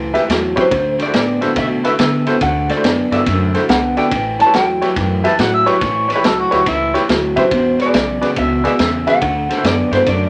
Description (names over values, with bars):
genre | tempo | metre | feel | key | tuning
electric blues shuffle | 141 BPM | 4/4 | swing 66% on 8ths | A mixolydian | A4 = 440 Hz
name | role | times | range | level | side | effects
electric guitar through a small old amp | riff | 0.0-10.3 s | E2 to B3 | -22 LUFS | equal | none
upright bass | bass | 0.0-10.3 s | E1 to D3 | -25 LUFS | equal | none
bright upright piano | accompaniment | 0.1-10.0 s | E4 to E5 | -21 LUFS | equal | none
vintage drum kit | drums | 0.1-10.2 s | kick drum, ride cymbal, snare drum | -22 LUFS | equal | none
electric guitar through a small old amp | melody | 0.6-10.3 s | C5 to A5 | -20 LUFS | equal | harmonic tremolo
mellow harmonica | second line | 5.3-6.9 s | E4 to A5 | -19 LUFS | equal | overdrive
room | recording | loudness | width
moderate small room reverb, RT60 0.5 s | none | -15 LUFS | mono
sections
0.0-10.3 A section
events
none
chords
0.0 A7; 0.7 D7; 4.1 A7; 7.5 E7; 9.2 D7